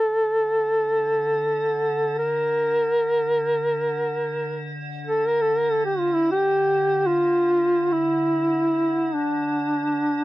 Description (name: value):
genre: caucasian folk, Caucasian lament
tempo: free time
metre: none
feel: none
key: D minor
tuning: A4 = 441 Hz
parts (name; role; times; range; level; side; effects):
- mellow duduk; melody; 0.0-10.2 s; D4 to Bb4; -20 LUFS; equal; none
- icy glass pad; drone; 0.2-10.2 s; D3; -32 LUFS; right 2 dB; chorus, built-in reverb
room: light reverb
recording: dry, close 1970s-style studio recording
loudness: -20 LUFS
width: side -17 dB against mid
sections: 0.0-10.2 A section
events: slowing down 6.4-10.2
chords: none